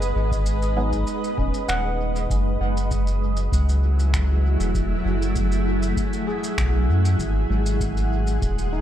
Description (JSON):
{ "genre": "ambient dub", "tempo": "98 BPM", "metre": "4/4", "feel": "straight", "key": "F# dorian", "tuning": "A4 = 440 Hz", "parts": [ { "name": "granular cloud pad", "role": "sustained chords", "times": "0.0-8.8 s", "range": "F#3 to F#5", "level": "-26 LUFS", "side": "right 1 dB", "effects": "built-in reverb" }, { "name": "soft dub sub bass", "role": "bass", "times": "0.0-8.8 s", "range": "D#1 to F#2", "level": "-21 LUFS", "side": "equal", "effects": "tube saturation" }, { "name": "shaker and finger snaps", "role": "drums", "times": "0.0-8.7 s", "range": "none", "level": "-33 LUFS", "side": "right 1 dB", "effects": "dub echo" }, { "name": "electronic kick drum", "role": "drums", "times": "0.3-8.5 s", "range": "none", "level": "-28 LUFS", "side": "equal", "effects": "none" }, { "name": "handpan", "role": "arpeggios", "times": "0.8-8.8 s", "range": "G#3 to F#5", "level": "-32 LUFS", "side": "left 1 dB", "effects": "dub echo" }, { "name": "filtered dub chord stab", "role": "stabs", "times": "0.8-1.0 s", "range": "F#3 to G#4", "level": "-36 LUFS", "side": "right 2 dB", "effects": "none" } ], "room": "small room ambience", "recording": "echo-heavy mix", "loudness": "-20 LUFS", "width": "side -11 dB against mid", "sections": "0.0-2.3 A section; 2.3-8.8 B section", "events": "none", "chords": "0.0 G#m7; 2.3 F#m7; 7.2 G#m7", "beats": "0.46 1.07 1.68 | 2.29 2.91 3.52 4.13 | 4.74 5.36 5.97 6.58 | 7.19 7.81 8.42" }